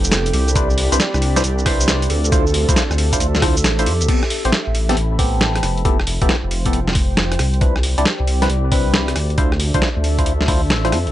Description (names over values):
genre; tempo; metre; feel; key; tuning
UK garage, two-step garage; 136 BPM; 4/4; swing 66% on 16ths; A minor; A4 = 440 Hz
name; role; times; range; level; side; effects
concert harp; melody; 0.0-6.2 s; F4 to D5; -27 LUFS; right 2 dB; analog delay
warm analog pad; sustained chords; 0.0-4.1 s; B3 to B5; -31 LUFS; equal; chorus, sidechain pumping
dark detuned saw bass; bass; 0.0-11.1 s; F1 to F2; -19 LUFS; equal; sidechain pumping
boom bap sampler-style drum kit; drums; 0.0-11.1 s; crash cymbal, hi-hat, rim click, shaker, snare drum; -20 LUFS; equal; none
warbly tape-like pad; texture; 0.0-11.1 s; F3 to B5; -28 LUFS; equal; chorus, built-in reverb, sidechain pumping
percussive organ stab; stabs; 0.6-11.0 s; B3 to D5; -23 LUFS; left 1 dB; chorus, phaser, analog delay
electronic kick drum; drums; 0.6-10.6 s; none; -19 LUFS; equal; none
room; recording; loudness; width
little or no reverb; dry, gritty hardware recording, nothing above 10.8 kHz; -15 LUFS; side -13 dB against mid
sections
0.0-4.1 A section; 4.1-11.1 B section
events
drop 0.0-4.1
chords
0.3 Cmaj9; 2.1 Dm9; 4.1 Am9; 5.8 Fmaj9#11; 7.4 Cmaj9; 9.2 Dm9